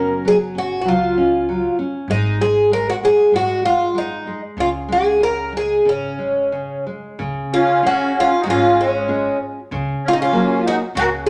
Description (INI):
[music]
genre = fado-style ballad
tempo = 96 BPM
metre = 4/4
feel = rubato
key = Db major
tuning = A4 = 440 Hz
[part]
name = picked twelve-string acoustic guitar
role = melody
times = 0.0-11.3 s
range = Db4 to Bb4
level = -19 LUFS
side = equal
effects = none
[part]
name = nylon-string guitar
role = accompaniment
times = 0.0-11.3 s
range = Db3 to F5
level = -27 LUFS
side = equal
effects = none
[part]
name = upright bass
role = bass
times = 0.0-11.3 s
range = Gb1 to Db2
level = -30 LUFS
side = equal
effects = none
[part]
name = musette accordion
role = second line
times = 7.5-11.3 s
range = Ab3 to Gb4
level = -24 LUFS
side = equal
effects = none
[sound]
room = moderate large studio reverb, RT60 1.1 s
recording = none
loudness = -18 LUFS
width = mono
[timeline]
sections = 0.0-7.2 A section; 7.2-11.3 B section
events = none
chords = 0.0 Gb5; 2.1 Ab5; 4.6 Db5; 7.2 Db; 9.7 Gbadd9/Db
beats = 0.25 0.87 1.48 | 2.09 2.71 3.33 3.95 | 4.58 5.22 5.87 6.53 | 7.19 7.83 8.46 9.09 | 9.71 10.33 10.95